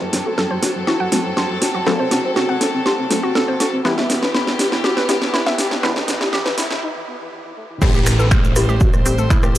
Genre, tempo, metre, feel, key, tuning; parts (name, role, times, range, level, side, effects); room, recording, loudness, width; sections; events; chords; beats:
melodic techno; 121 BPM; 4/4; straight; E minor; A4 = 441 Hz
soft octave-layered synth lead; melody; 0.0-9.6 s; E3 to C5; -24 LUFS; left 1 dB; chorus, tremolo, analog delay
rich chamber string section; sustained chords; 0.0-9.6 s; E3 to C5; -25 LUFS; equal; sidechain pumping
filtered dub chord stab; stabs; 0.0-9.6 s; E3 to C4; -28 LUFS; left 2 dB
plucky analog bass; bass; 0.0-9.6 s; E1 to A1; -24 LUFS; equal; sidechain pumping, high-pass filter
riser and downlifter; sound effects; 2.3-9.6 s; -30 LUFS; equal
house drum kit; drums; 0.1-9.6 s; crash cymbal, finger snaps, hi-hat, rim click, snare drum; -21 LUFS; equal; overdrive
woody wave-folded pluck; arpeggios; 0.3-9.5 s; E4 to C6; -24 LUFS; equal; chorus, sidechain pumping, analog delay
electronic kick drum; drums; 7.8-9.4 s; -16 LUFS; equal; overdrive
cabasa; percussion; 7.8-9.6 s; -29 LUFS; right 3 dB
light reverb, digital ambience; dry, gritty hardware recording, transformer saturation, high-pass filter; -15 LUFS; side -13 dB against mid
0.0-7.8 A section; 7.8-9.6 B section
build-up 0.0-7.8; drum fill 0.0-6.8; filter sweep on soft synth lead 0.0-7.8; break 6.8-7.8; drop 7.8-9.6
0.0 F#dim; 3.9 Em; 7.8 Am7
0.38 0.87 1.37 | 1.87 2.36 2.86 3.35 | 3.85 4.34 4.84 5.34 | 5.83 6.33 6.83 7.32 | 7.82 8.31 8.81 9.30